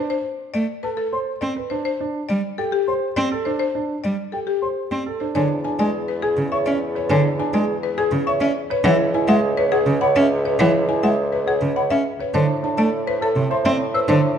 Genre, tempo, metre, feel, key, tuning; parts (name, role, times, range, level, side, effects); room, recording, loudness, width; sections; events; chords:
classical, minimalist pattern music; 103 BPM; 3/4; straight; E mixolydian; A4 = 445 Hz
buzzing marimba with hard mallets; melody; 0.0-14.3 s; G4 to A5; -24 LUFS; left 8 dB
warm grand piano; arpeggios; 0.0-14.3 s; D4 to C#5; -25 LUFS; right 7 dB
rich cello; accompaniment; 0.5-14.2 s; C3 to C#4; -22 LUFS; right 2 dB
mellow hollow concert flute; arpeggios; 0.8-14.1 s; E5 to E6; -29 LUFS; left 3 dB
warm bassoon; bass; 5.4-14.4 s; C#2 to A2; -24 LUFS; right 1 dB
moderate scoring stage reverb, RT60 1.7 s; dark, warm production; -18 LUFS; side -8 dB against mid
0.0-5.4 A section; 5.4-14.4 A section
0.0 Amadd9; 1.9 C5; 5.4 E7; 8.8 C#m7; 12.3 Am